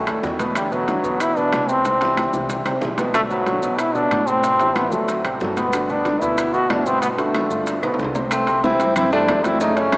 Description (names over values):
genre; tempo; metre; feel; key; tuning
Afro-Cuban jazz; 186 BPM; 4/4; straight; G major; A4 = 440 Hz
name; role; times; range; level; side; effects
bright trombone; melody; 0.0-10.0 s; F#3 to F#4; -20 LUFS; equal; none
upright bass; bass; 0.0-10.0 s; G1 to B2; -34 LUFS; equal; none
warm grand piano; accompaniment; 0.1-10.0 s; A2 to C#5; -24 LUFS; equal; none
bongos; percussion; 0.1-10.0 s; none; -31 LUFS; left 1 dB; none
claves; percussion; 0.1-10.0 s; none; -36 LUFS; left 1 dB; none
congas; percussion; 0.1-10.0 s; none; -31 LUFS; equal; none
maracas; percussion; 0.1-10.0 s; none; -40 LUFS; left 1 dB; none
timbales; percussion; 0.1-10.0 s; none; -28 LUFS; right 1 dB; none
mellow tenor saxophone; second line; 8.3-10.0 s; A3 to C4; -23 LUFS; equal; none
room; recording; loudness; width
wet cathedral reverb, RT60 6.2 s; in a vast, echoing space, small speaker sound; -17 LUFS; side -23 dB against mid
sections
0.0-8.3 A section; 8.3-10.0 B section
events
drum fill 1.9-3.1, 7.8-8.3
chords
0.0 B7; 0.6 Esus2; 1.9 C; 3.1 Bm7; 4.4 Am7; 5.1 D7; 5.7 Gmaj9; 7.7 G7; 8.3 C69